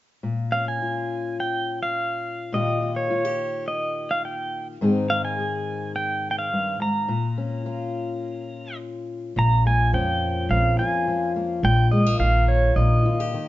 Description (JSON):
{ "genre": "folk", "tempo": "105 BPM", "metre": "4/4", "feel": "straight", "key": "Bb dorian", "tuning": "A4 = 436 Hz", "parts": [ { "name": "fingerpicked steel-string acoustic guitar", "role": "accompaniment", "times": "0.2-13.5 s", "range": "F2 to Ab4", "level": "-26 LUFS", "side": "left 3 dB", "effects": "none" }, { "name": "pedal steel guitar", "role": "melody", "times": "0.5-13.5 s", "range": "Db5 to Bb5", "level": "-24 LUFS", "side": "right 1 dB", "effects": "plate reverb" }, { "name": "upright bass", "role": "bass", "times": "9.4-13.0 s", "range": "Bb1 to F2", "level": "-20 LUFS", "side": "right 1 dB", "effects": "none" } ], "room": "light reverb", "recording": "dark, warm production, nothing above 7.7 kHz", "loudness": "-21 LUFS", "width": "side -15 dB against mid", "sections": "0.2-9.4 A section; 9.4-13.5 B section", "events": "none", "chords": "0.2 Bbm; 2.5 Ebadd9/Bb; 4.8 Ab; 7.1 Bbm; 11.6 Ebadd9/Bb", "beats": "| 0.24 0.81 1.38 1.95 | 2.52 3.09 3.66 4.23 | 4.80 5.37 5.94 6.51 | 7.08 7.65 8.22 8.79 | 9.36 9.93 10.49 11.06 | 11.63 12.20 12.76 13.33" }